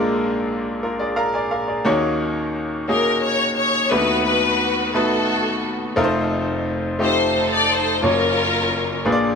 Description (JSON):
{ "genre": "gospel", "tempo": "58 BPM (dotted quarters)", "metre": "6/8", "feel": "straight", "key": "Eb minor", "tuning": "A4 = 440 Hz", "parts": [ { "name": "bright grand piano", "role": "accompaniment", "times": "0.0-9.4 s", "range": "F1 to A#5", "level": "-20 LUFS", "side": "equal", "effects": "none" }, { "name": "clear studio string section", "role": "melody", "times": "2.9-9.0 s", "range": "Db4 to D5", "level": "-19 LUFS", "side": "left 2 dB", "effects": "tape echo" } ], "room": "moderate echo chamber reverb, RT60 1.9 s", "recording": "none", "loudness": "-17 LUFS", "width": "side -6 dB against mid", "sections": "0.0-1.9 A section; 1.9-9.4 B section", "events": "grand piano fill 0.8-1.9, 9.0-9.4", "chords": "0.0 A#7; 1.9 Ebm7; 3.9 B7/D#; 6.0 F7; 8.0 Gbmaj7" }